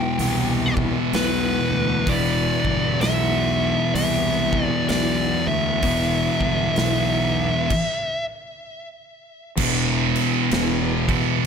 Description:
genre	stoner and doom metal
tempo	64 BPM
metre	4/4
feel	swing 62% on 8ths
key	unclear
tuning	A4 = 438 Hz
part	fuzz lead guitar	melody	0.0-8.2 s	B4 to G5	-25 LUFS	left 1 dB	distortion, digital delay
part	tonewheel organ	sustained chords	0.0-11.5 s	E3 to E4	-34 LUFS	right 1 dB	slow rotary speaker, overdrive, chorus vibrato
part	thick fuzz guitar	riff	0.0-11.5 s	E2 to E3	-24 LUFS	left 11 dB	distortion
part	thick fuzz guitar	riff	0.0-11.5 s	E2 to E3	-24 LUFS	right 12 dB	distortion
part	fuzz fingered electric bass	bass	0.2-11.1 s	E1 to D2	-28 LUFS	equal	overdrive
part	big rock drum kit	drums	0.2-11.3 s	crash cymbal, hi-hat, kick drum, snare drum	-28 LUFS	right 1 dB	none
room	light reverb, studio ambience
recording	none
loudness	-18 LUFS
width	side -6 dB against mid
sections	0.0-9.6 A section; 9.6-11.5 B section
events	stop 7.7-9.6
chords	0.0 E5

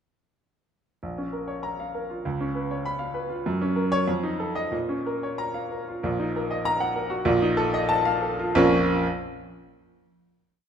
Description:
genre	classical, virtuoso piano study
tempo	88-101 BPM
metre	2/4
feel	rubato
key	Bb minor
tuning	A4 = 442 Hz
part	clear baby grand piano	solo	1.0-9.1 s	Bb1 to Cb6	-23 LUFS	equal	none
room	moderate recital hall reverb, RT60 1.5 s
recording	dark, warm production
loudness	-23 LUFS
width	side -8 dB against mid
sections	1.0-6.0 A section; 6.0-8.6 coda; 8.6-9.9 final chord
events	slowing down 5.4-8.6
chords	1.0 Bbm; 2.2 Db7; 3.4 Gb; 4.1 F7; 4.7 Bbm; 6.0 Ebm/Bb; 7.3 F7/Bb; 8.6 Bbm

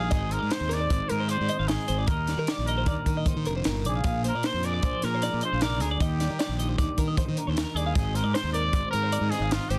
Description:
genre	math rock and midwest emo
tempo	153 BPM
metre	5/4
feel	straight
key	Ab lydian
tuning	A4 = 440 Hz
part	warm trumpet	melody	0.0-9.8 s	F4 to D5	-34 LUFS	equal	tape echo
part	twelve-string electric guitar	accompaniment	0.0-9.8 s	Ab2 to C5	-36 LUFS	equal	none
part	twelve-string electric guitar	arpeggios	0.0-9.8 s	Bb4 to F5	-36 LUFS	equal	phaser
part	fuzz fingered electric bass	bass	0.0-9.8 s	F1 to Eb3	-31 LUFS	equal	overdrive
part	compact cocktail drum kit	drums	0.1-9.8 s	hi-hat, kick drum, snare drum	-31 LUFS	equal	none
room	light reverb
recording	dense, heavily limited modern master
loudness	-27 LUFS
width	mono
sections	0.0-9.8 A section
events	none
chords	0.1 Ab; 2.1 Ebmaj7; 4.0 Bb7; 6.0 Ebmaj7; 8.0 Ab

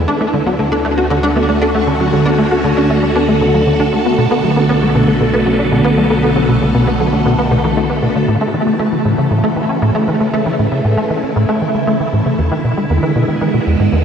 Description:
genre	ambient, sequencer-driven space music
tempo	117 BPM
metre	4/4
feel	straight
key	A major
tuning	A4 = 440 Hz
part	phased string machine	sustained chords	0.0-14.0 s	C#3 to A4	-15 LUFS	equal	ensemble chorus, phaser, shimmer reverb
part	soft round pluck	arpeggios	0.0-8.2 s	G#3 to A4	-20 LUFS	moving between left 6 dB and right 2 dB	chorus, auto-pan, tape echo, shimmer reverb
part	tight sequencer bass	riff	0.0-14.0 s	E2 to F#4	-16 LUFS	equal	ensemble chorus, tape echo, shimmer reverb
part	fat analog bass	bass	0.0-8.3 s	B1 to D2	-22 LUFS	equal	none
room	wet spring reverb, RT60 2.4 s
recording	echo-heavy mix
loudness	-12 LUFS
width	side -7 dB against mid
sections	0.0-8.3 A section; 8.3-14.0 B section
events	none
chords	0.1 Dmaj7; 4.2 Bm7; 8.3 A; 12.4 E7

